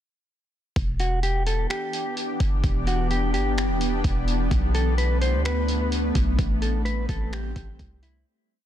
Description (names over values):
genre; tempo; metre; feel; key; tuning
hip hop, atmospheric cloud-rap; 128 BPM; 4/4; half-time; E minor; A4 = 439 Hz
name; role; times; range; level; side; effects
shimmering ambient pad; sustained chords; 1.5-8.2 s; E3 to G4; -28 LUFS; left 1 dB; chorus, built-in reverb, sidechain pumping
warm 808-style bass; bass; 0.8-8.2 s; E1 to D2; -24 LUFS; equal; none
trip hop sampler-style drum kit; drums; 0.8-8.1 s; finger snaps, hi-hat, kick drum; -28 LUFS; equal; overdrive, vintage 12-bit sampler grit
mellow electric guitar; melody; 1.0-8.2 s; E4 to C5; -30 LUFS; left 1 dB; ping-pong delay
room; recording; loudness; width
little or no reverb; dense, heavily limited modern master; -22 LUFS; side -11 dB against mid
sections
0.8-8.3 verse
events
fade-out 6.4-8.3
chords
0.8 Em7; 4.5 Bm7; 6.4 Am7